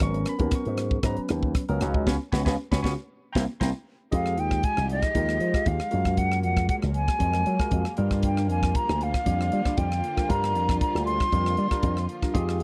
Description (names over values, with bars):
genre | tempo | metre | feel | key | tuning
electric jazz fusion | 117 BPM | 4/4 | straight | G# minor | A4 = 444 Hz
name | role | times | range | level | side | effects
barky tine electric piano | accompaniment | 0.0-12.6 s | F#3 to C#6 | -33 LUFS | equal | phaser
slap bass with an envelope filter | bass | 0.0-12.6 s | G#1 to G3 | -29 LUFS | equal | none
crisp fusion drum kit | drums | 0.0-12.6 s | hi-hat, kick drum, rim click, snare drum | -30 LUFS | equal | none
hollow silver concert flute | melody | 4.1-12.0 s | Eb5 to C6 | -30 LUFS | equal | none
rich studio string section | sustained chords | 4.1-12.6 s | D3 to G4 | -39 LUFS | equal | none
room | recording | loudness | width
little or no reverb | dry, close 1970s-style studio recording | -25 LUFS | mono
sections
0.0-4.1 A section; 4.1-12.6 B section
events
band accent 2.1-4.1; tine electric piano fill 7.5-8.2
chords
0.0 G#m11; 1.8 C#9sus4; 3.1 C7; 4.1 Fm9; 5.9 Gbmaj9; 8.0 Gm7